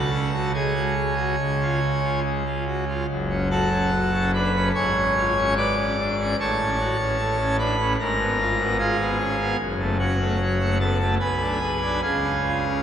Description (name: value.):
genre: classical, chorale-style piece for pipe organ.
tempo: 69-75 BPM.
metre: 4/4.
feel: rubato.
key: F# minor.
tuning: A4 = 439 Hz.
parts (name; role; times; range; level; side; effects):
pipe organ, full organ; solo; 0.0-12.8 s; F#1 to D6; -20 LUFS; equal; none.
room: wet cathedral reverb, RT60 5.2 s.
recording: recorded in a church or concert hall.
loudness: -20 LUFS.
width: side -9 dB against mid.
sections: 0.0-12.8 A section.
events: none.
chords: 0.0 C#sus4; 1.4 C#; 3.1 F#m; 4.7 C#7/G#; 6.4 F#m/A; 8.0 Fdim/Ab; 9.6 F#m; 11.2 G#dim/B; 12.0 C#.